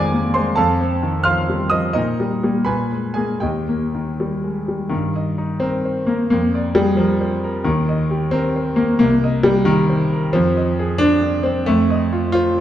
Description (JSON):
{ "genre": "classical, virtuoso piano study", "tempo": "77-92 BPM (dotted quarters)", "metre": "6/8", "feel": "rubato", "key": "Eb major", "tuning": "A4 = 441 Hz", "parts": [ { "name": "clear grand piano", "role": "solo", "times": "0.0-12.6 s", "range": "C2 to F6", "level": "-16 LUFS", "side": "equal", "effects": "none" } ], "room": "wet recital hall reverb, RT60 1.4 s", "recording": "dark, warm production", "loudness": "-16 LUFS", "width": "side -11 dB against mid", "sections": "0.0-4.9 A section; 4.9-12.6 A section", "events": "none", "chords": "0.0 Fm7; 0.6 F7; 2.0 Eb/Bb; 2.7 Abmadd9/Bb; 3.4 Eb; 4.9 Eb/G; 6.3 Bb7/F; 7.7 Eb; 9.0 Cm7; 10.3 Fm7; 11.7 F7", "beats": "| 0.58 1.26 | 1.95 2.67 | 3.43 4.19 | 4.92 5.62 | 6.31 6.99 | 7.66 8.34 | 9.01 9.68 | 10.35 11.00 | 11.67 12.34" }